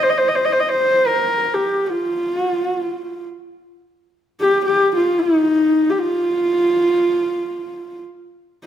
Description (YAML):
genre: mongolian traditional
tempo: free time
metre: none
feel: none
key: unclear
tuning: A4 = 440 Hz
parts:
  - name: warm horsehead fiddle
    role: solo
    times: 0.0-8.0 s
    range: Eb4 to Eb5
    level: -16 LUFS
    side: equal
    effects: none
room: wet scoring stage reverb, RT60 1.5 s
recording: none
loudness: -16 LUFS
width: side -10 dB against mid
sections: 0.0-8.7 A section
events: none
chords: none